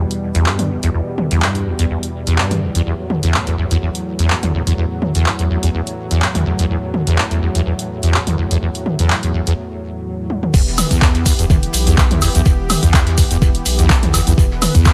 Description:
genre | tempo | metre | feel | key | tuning
acid house | 125 BPM | 4/4 | swing 54% on 16ths | E minor | A4 = 441 Hz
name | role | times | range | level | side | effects
warm analog pad | sustained chords | 0.0-14.9 s | E2 to B4 | -26 LUFS | equal | chorus, tremolo, sidechain pumping
acid bass, saw | riff | 0.0-14.9 s | E2 to G2 | -19 LUFS | equal | ensemble chorus, sidechain pumping
punchy analog drum machine | drums | 0.1-14.9 s | crash cymbal, handclaps, hi-hat, ride cymbal, toms, woodblock | -21 LUFS | equal | none
round analog bass | bass | 10.5-14.9 s | E1 to E2 | -21 LUFS | equal | sidechain pumping
cloth-damped thuddy drum kit | drums | 10.5-14.9 s | hi-hat, snare drum | -34 LUFS | equal | none
electronic kick drum | drums | 10.5-14.9 s | none | -15 LUFS | equal | overdrive
tube shaker | percussion | 10.5-14.9 s | none | -28 LUFS | equal | none
room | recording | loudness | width
digital ambience | none | -16 LUFS | mono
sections
0.0-10.5 A section; 10.5-14.9 B section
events
break 9.6-10.5; drum fill 10.3; drop 10.5-14.9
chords
0.0 Em

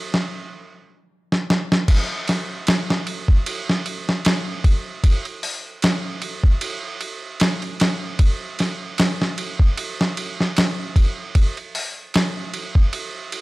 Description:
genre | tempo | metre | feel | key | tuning
trip hop | 76 BPM | 4/4 | swing 55% on 16ths | none | none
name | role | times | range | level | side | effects
dusty soul sampler-style drum kit | drums | 0.1-13.4 s | crash cymbal, hi-hat, kick drum, ride cymbal, snare drum | -19 LUFS | equal | none
room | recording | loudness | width
light reverb, digital ambience | none | -19 LUFS | side -21 dB against mid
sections
0.0-1.9 A section; 1.9-13.4 B section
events
drum fill 1.3-1.9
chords
none

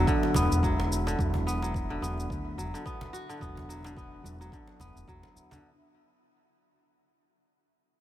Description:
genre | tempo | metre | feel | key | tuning
organic downtempo | 108 BPM | 4/4 | swing 57% on 16ths | unclear | A4 = 440 Hz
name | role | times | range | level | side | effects
felt-muted upright piano | accompaniment | 0.0-5.7 s | D3 to F#4 | -36 LUFS | right 1 dB | sidechain pumping, low-pass filter, ping-pong delay
kora | arpeggios | 0.0-6.7 s | D3 to F#4 | -33 LUFS | left 1 dB | ping-pong delay
upright bass | bass | 0.0-5.6 s | E1 to E2 | -30 LUFS | equal | sidechain pumping
wind-like tuned noise texture | texture | 0.0-5.6 s | E4 to E5 | -42 LUFS | equal | built-in reverb
electronic kick drum | drums | 0.1-5.2 s | none | -33 LUFS | equal | none
shaker | drums | 0.1-5.6 s | none | -41 LUFS | left 1 dB | none
cajon | percussion | 0.2-5.6 s | none | -36 LUFS | right 2 dB | none
room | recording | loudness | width
light reverb, small room ambience | none | -27 LUFS | side -13 dB against mid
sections
0.0-5.6 A section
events
fade-out 0.0-5.6; filter sweep on upright bass 0.0-5.6; filter sweep on felt piano 0.0-5.6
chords
0.0 Bm/E

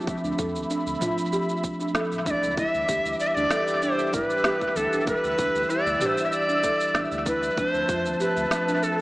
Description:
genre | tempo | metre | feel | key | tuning
organic downtempo | 96 BPM | 4/4 | swing 53% on 16ths | unclear | A4 = 440 Hz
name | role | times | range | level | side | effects
mellow electric guitar | accompaniment | 0.0-9.0 s | E3 to E5 | -32 LUFS | equal | sidechain pumping, tape echo
warm analog pad | sustained chords | 0.0-9.0 s | F3 to E6 | -30 LUFS | equal | chorus, sidechain pumping
buzzing marimba with soft mallets | arpeggios | 0.0-8.9 s | D4 to A4 | -30 LUFS | right 2 dB | tape echo
electronic kick drum | drums | 0.1-8.0 s | none | -31 LUFS | equal | none
organic electronic drum kit | drums | 0.1-9.0 s | cabasa, snare drum, toms | -32 LUFS | equal | tape echo
warm sub bass | bass | 0.2-8.5 s | D1 to F2 | -38 LUFS | equal | sidechain pumping
breathy bright Native American-style cedar flute | melody | 2.3-9.0 s | A4 to E5 | -25 LUFS | equal | tape echo
room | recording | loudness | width
wet spring reverb, RT60 2.1 s | echo-heavy mix, small speaker sound | -22 LUFS | side -19 dB against mid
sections
0.0-9.0 A section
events
none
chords
0.0 Dm9; 2.6 Em7; 7.6 Dm9

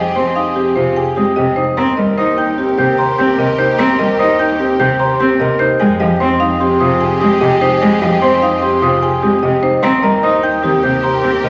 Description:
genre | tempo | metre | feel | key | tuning
classical, minimalist pattern music | 149 BPM | 5/4 | straight | unclear | A4 = 440 Hz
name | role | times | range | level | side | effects
marimba with hard mallets | melody | 0.0-11.5 s | G4 to Bb5 | -19 LUFS | equal | none
warm cello | accompaniment | 0.0-11.5 s | C3 to Eb4 | -20 LUFS | equal | none
rich symphonic string section | sustained chords | 0.0-11.5 s | G4 to Bb4 | -26 LUFS | equal | none
dark baby grand piano | arpeggios | 0.0-11.5 s | C4 to Eb5 | -21 LUFS | equal | none
large celesta | arpeggios | 0.0-11.5 s | Ab5 to G6 | -21 LUFS | equal | none
rich symphonic double bass section | bass | 0.0-11.5 s | Eb2 to F2 | -28 LUFS | equal | none
room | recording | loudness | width
wet scoring stage reverb, RT60 1.8 s | vinyl crackle, nothing above 8.0 kHz | -14 LUFS | mono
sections
0.0-11.5 A section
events
none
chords
0.0 Fmadd9; 1.8 Eb; 5.8 Fmadd9; 9.8 Eb

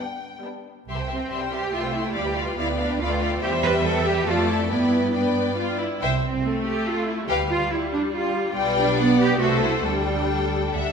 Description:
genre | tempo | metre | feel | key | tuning
quick classical-period movement for string orchestra | 140 BPM | 3/4 | rubato | C major | A4 = 440 Hz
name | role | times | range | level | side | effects
dark studio violin section | melody | 0.0-10.9 s | E5 to C6 | -31 LUFS | left 6 dB | none
warm symphonic violin section | second line | 0.0-10.9 s | D4 to G5 | -27 LUFS | left 3 dB | none
rich symphonic viola section | accompaniment | 0.0-10.9 s | G3 to F4 | -25 LUFS | equal | none
warm symphonic double bass section | bass | 0.9-10.8 s | B1 to G2 | -29 LUFS | right 4 dB | none
rich symphonic cello section | bass | 1.1-10.9 s | C4 to B4 | -26 LUFS | right 3 dB | none
room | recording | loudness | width
wet concert hall reverb, RT60 1.9 s | none | -20 LUFS | side -6 dB against mid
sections
0.9-10.9 A section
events
none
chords
0.0 G; 0.9 C; 2.2 G7/D; 3.4 C/E; 4.3 Dm/F; 4.7 G; 6.0 C; 7.3 G7(no3)/D; 8.6 G/B; 9.4 Am/C; 9.8 Dsus4

